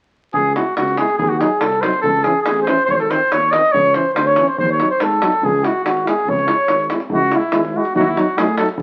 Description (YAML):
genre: balkan folk, Balkan brass band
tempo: 142 BPM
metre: 2/4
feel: straight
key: C# harmonic minor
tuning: A4 = 443 Hz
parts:
  - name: warm cornet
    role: melody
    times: 0.3-8.7 s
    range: E4 to D#5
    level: -20 LUFS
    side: equal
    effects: none
  - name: mellow flugelhorn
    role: second line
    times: 0.3-6.9 s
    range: F#4 to D#5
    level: -22 LUFS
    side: equal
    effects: none
  - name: mellow tuba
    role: bass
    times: 0.3-8.8 s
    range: G#1 to A2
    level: -27 LUFS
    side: equal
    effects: none
  - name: davul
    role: percussion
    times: 0.3-8.8 s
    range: none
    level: -26 LUFS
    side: equal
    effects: none
  - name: mellow French horn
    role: accompaniment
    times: 0.6-8.8 s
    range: B#3 to E4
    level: -25 LUFS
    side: equal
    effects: none
  - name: mellow trombone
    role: accompaniment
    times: 0.6-8.7 s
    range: D#3 to G#3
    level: -28 LUFS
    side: equal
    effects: none
room: moderate studio reverb, RT60 0.8 s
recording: very old 78 rpm record, vinyl crackle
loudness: -17 LUFS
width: mono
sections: 0.3-7.1 A section; 7.1-8.8 A section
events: none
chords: 0.3 C#m; 1.2 G#7b9; 2.0 C#m; 2.9 G#; 3.7 C#m; 4.6 D#dim; 5.4 C#m; 8.0 D#dim